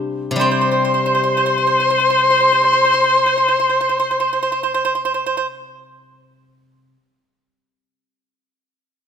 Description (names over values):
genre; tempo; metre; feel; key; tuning
chinese traditional, Chinese chamber ensemble; 45 BPM; 2/4; rubato; unclear; A4 = 442 Hz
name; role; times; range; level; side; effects
steel-string zither; accompaniment; 0.0-6.9 s; C3 to G4; -24 LUFS; left 3 dB; none
large dizi; melody; 0.4-5.3 s; C6; -19 LUFS; right 2 dB; none
pipa; second line; 0.4-5.5 s; C5; -20 LUFS; right 5 dB; none
warm erhu; second line; 0.4-5.3 s; C5; -18 LUFS; left 6 dB; none
room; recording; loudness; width
light reverb; close, detailed microphones; -14 LUFS; side -7 dB against mid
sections
0.4-5.7 A section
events
none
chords
none